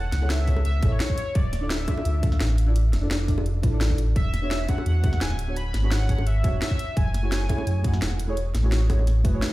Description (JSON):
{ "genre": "liquid drum and bass", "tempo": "171 BPM", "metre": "4/4", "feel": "straight", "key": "unclear", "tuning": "A4 = 440 Hz", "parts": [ { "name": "warm velvety synth lead", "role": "melody", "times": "0.0-8.0 s", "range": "C#5 to B5", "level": "-34 LUFS", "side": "equal", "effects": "chorus, dub echo" }, { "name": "sub bass with octave", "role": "bass", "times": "0.0-9.4 s", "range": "D1 to F#2", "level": "-23 LUFS", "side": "equal", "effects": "tube saturation" }, { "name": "garage drum kit", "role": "drums", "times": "0.1-9.5 s", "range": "hi-hat, snare drum", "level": "-32 LUFS", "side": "equal", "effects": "none" }, { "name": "deep mellow chord stab", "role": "accompaniment", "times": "0.2-9.5 s", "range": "A3 to F#5", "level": "-32 LUFS", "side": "equal", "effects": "chorus, phaser, cassette tape, dub echo" }, { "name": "bongos", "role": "percussion", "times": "0.2-9.1 s", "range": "none", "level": "-36 LUFS", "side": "equal", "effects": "none" }, { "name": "electronic kick drum", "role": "drums", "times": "0.5-9.3 s", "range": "none", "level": "-23 LUFS", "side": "equal", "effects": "none" } ], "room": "little or no reverb", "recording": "played on a big sound system in a bare room, large studio reverb", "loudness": "-21 LUFS", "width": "side -18 dB against mid", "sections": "0.0-9.5 A section", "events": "none", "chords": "0.0 Amaj9; 1.4 Dmadd9; 4.2 E13; 6.8 F#m9", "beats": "0.30 0.65 1.00 | 1.35 1.70 2.06 2.41 | 2.76 3.11 3.46 3.81 | 4.16 4.51 4.86 5.21 | 5.56 5.91 6.26 6.62 | 6.97 7.32 7.67 8.02 | 8.37 8.72 9.07 9.42" }